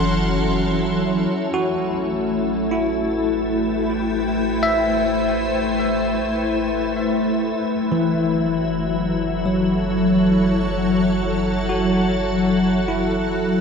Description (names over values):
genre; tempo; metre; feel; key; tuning
ambient; 76 BPM; 4/4; straight; unclear; A4 = 441 Hz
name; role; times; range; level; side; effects
soft additive organ-like pad; sustained chords; 0.0-13.6 s; F#3 to G5; -20 LUFS; left 1 dB; ensemble chorus, built-in reverb
barky tine electric piano; arpeggios; 0.0-13.6 s; E3 to E5; -23 LUFS; equal; medium stereo tremolo, tape echo
warm sub bass; bass; 0.0-13.6 s; F#1 to A1; -31 LUFS; equal; none
warm studio violin section; texture; 0.0-1.3 s; C6; -32 LUFS; left 1 dB; none
room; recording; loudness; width
wet cathedral reverb, RT60 5.2 s; none; -18 LUFS; side -5 dB against mid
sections
0.0-1.3 A section; 1.3-13.6 B section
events
fade-in on sub bass 1.3-13.6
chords
0.0 F#m7; 1.3 Am7; 7.6 F#m7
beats
0.51 | 1.31 2.10 2.89 3.68 | 4.46 5.24 6.02 6.80 | 7.58 8.35 9.13 9.90 | 10.69 11.47 12.26 13.06